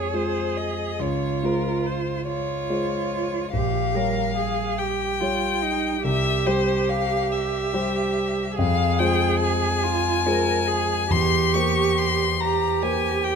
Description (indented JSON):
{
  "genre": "classical, slow romantic movement for piano trio",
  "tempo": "47 BPM (dotted quarters)",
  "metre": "6/8",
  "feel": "rubato",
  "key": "F minor",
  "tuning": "A4 = 441 Hz",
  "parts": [
    { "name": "rich violin", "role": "melody", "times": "0.0-13.4 s", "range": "Bb4 to Db6", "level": "-26 LUFS", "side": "left 8 dB", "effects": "none" },
    { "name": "rich cello", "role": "second line", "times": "0.0-13.4 s", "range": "Eb4 to Bb4", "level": "-26 LUFS", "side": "right 8 dB", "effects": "none" },
    { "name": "dark concert grand piano", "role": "accompaniment", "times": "0.0-13.4 s", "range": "Bb1 to Db5", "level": "-24 LUFS", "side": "left 1 dB", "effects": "none" }
  ],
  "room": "light reverb",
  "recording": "close, detailed microphones",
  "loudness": "-20 LUFS",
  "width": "side -6 dB against mid",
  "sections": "0.0-13.4 A section",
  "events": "none",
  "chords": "0.0 Fm; 1.0 Dbmaj7; 3.5 Gm7b5/Bb; 6.0 C; 8.6 Fm; 11.1 C7/E",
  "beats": "| 0.99 2.27 | 3.53 4.79 | 6.05 7.32 | 8.57 9.84 | 11.11 12.40"
}